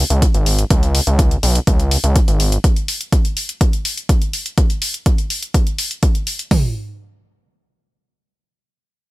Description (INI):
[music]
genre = melodic techno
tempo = 124 BPM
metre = 4/4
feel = straight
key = unclear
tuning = A4 = 438 Hz
[part]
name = gritty driven synth bass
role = bass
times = 0.0-2.6 s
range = G#1 to C#2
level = -16 LUFS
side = equal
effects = tube saturation, sidechain pumping
[part]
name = electronic hi-hat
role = drums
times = 0.1-6.5 s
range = none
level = -22 LUFS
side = left 1 dB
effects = sidechain pumping on hats, sidechain pumping on toms
[part]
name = deep house drum kit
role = drums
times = 0.2-6.6 s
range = hi-hat, kick drum, toms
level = -14 LUFS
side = equal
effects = none
[sound]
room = little or no reverb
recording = bright 1980s-style digital production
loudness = -14 LUFS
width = side -19 dB against mid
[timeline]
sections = 0.0-6.5 A section; 6.5-9.1 B section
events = none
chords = none